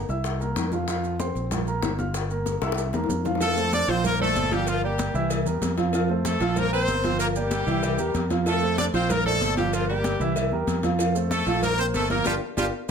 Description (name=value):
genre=latin, salsa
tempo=190 BPM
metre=4/4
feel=straight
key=F major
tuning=A4 = 440 Hz
part: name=dark baby grand piano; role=accompaniment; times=0.0-12.9 s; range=Bb2 to F6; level=-27 LUFS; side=right 2 dB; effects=none
part: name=fingered electric bass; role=bass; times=0.0-12.9 s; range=G1 to F2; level=-28 LUFS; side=equal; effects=none
part: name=bongos and cowbell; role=percussion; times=0.1-12.9 s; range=none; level=-32 LUFS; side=left 8 dB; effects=none
part: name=congas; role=percussion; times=0.1-12.9 s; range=none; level=-32 LUFS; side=left 1 dB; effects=none
part: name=maracas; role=percussion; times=0.1-12.9 s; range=none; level=-39 LUFS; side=right 8 dB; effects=none
part: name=brilliant horn section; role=melody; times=3.4-12.7 s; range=F3 to D5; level=-26 LUFS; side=equal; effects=none
room=light reverb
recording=none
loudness=-22 LUFS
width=side -7 dB against mid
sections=0.0-3.4 A section; 3.4-12.9 B section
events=drum fill 2.6-3.4; band accent 12.3-12.9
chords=0.2 C7; 0.9 F5; 1.5 Bb5; 2.1 Gm7; 2.8 C7; 3.4 F; 4.0 Bbadd9; 4.7 Gm7; 5.3 C7; 5.9 F; 6.6 Bbsus2; 7.2 Gm7; 7.8 C7; 8.5 F; 9.1 Bbadd9; 9.7 Gm7; 10.4 C7; 11.0 F; 11.6 Bbsus2; 12.3 G5